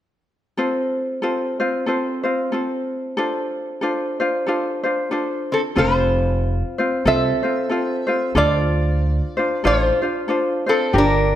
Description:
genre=Hawaiian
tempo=93 BPM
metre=4/4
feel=swing 58% on 8ths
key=F major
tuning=A4 = 440 Hz
part: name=ukulele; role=accompaniment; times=0.6-11.4 s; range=C4 to C5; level=-21 LUFS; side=left 1 dB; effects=none
part: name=lap resonator guitar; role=melody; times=5.5-11.4 s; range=C4 to E5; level=-20 LUFS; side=equal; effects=none
part: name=upright bass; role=bass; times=5.8-11.4 s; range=F1 to D2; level=-20 LUFS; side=right 1 dB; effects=none
room=light reverb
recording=none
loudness=-18 LUFS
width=side -11 dB against mid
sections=0.6-5.8 A section; 5.8-11.4 B section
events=none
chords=0.6 F; 3.2 Dm7; 5.8 F; 8.4 Dm7

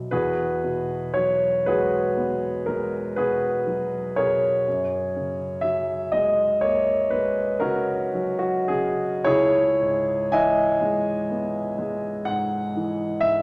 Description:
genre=classical, impressionist solo piano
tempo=35-42 BPM (dotted quarters)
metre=9/8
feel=rubato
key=E lydian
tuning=A4 = 441 Hz
part: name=warm concert grand piano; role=solo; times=0.0-13.4 s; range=C#2 to E6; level=-24 LUFS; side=equal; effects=none
room=wet recital hall reverb, RT60 1.7 s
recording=none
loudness=-24 LUFS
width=mono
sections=0.1-13.4 A section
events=none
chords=0.1 Eadd9; 4.7 F#add9; 9.3 C#m9

